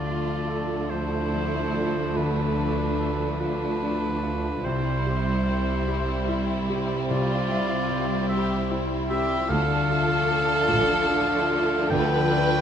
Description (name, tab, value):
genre	cinematic, emotional film score for orchestra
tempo	49 BPM (dotted quarters)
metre	6/8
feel	rubato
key	D dorian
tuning	A4 = 440 Hz
part	warm chamber violin section	melody	0.0-12.6 s	D4 to B4	-31 LUFS	left 2 dB	none
part	clear oboe	second line	0.0-12.6 s	B4 to G5	-29 LUFS	right 1 dB	none
part	warm symphonic violin section	second line	0.0-12.6 s	A3 to E4	-32 LUFS	left 2 dB	none
part	clear concert grand piano	accompaniment	0.0-12.6 s	C2 to E5	-31 LUFS	equal	none
part	warm symphonic viola section	accompaniment	0.0-12.6 s	D3 to G3	-31 LUFS	right 3 dB	none
part	concert harp	arpeggios	0.0-12.6 s	C3 to E5	-33 LUFS	left 8 dB	none
part	rich symphonic cello section	bass	0.0-12.6 s	C2 to A2	-31 LUFS	right 3 dB	none
part	warm symphonic double bass section	bass	0.0-12.6 s	A1 to D2	-33 LUFS	right 3 dB	none
room	light reverb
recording	close, detailed microphones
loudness	-22 LUFS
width	side -8 dB against mid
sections	0.0-12.6 A section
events	none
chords	0.0 Dm; 4.6 C; 9.5 Dm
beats	0.92 | 2.18 3.42 | 4.65 5.88 | 7.09 8.29 | 9.50 10.71 | 11.92